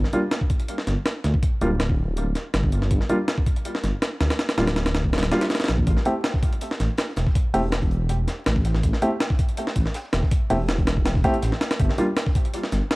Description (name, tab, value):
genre	drum and bass, jungle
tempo	162 BPM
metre	4/4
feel	straight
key	A phrygian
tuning	A4 = 440 Hz
part	dark detuned saw bass	bass	0.0-12.8 s	D1 to D2	-23 LUFS	equal	none
part	breakbeat sampler-style drum kit	drums	0.0-13.0 s	hi-hat, kick drum, snare drum	-22 LUFS	equal	none
part	dark grand piano	stabs	0.1-12.0 s	G3 to G4	-26 LUFS	equal	dub echo
part	crunchy breakbeat drum kit	drums	5.9-13.0 s	hi-hat, snare drum	-41 LUFS	equal	none
room	small room ambience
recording	dry, gritty hardware recording, transformer saturation, vinyl crackle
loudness	-20 LUFS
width	side -22 dB against mid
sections	0.0-13.0 A section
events	none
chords	0.0 G5; 5.9 A5; 11.8 N.C.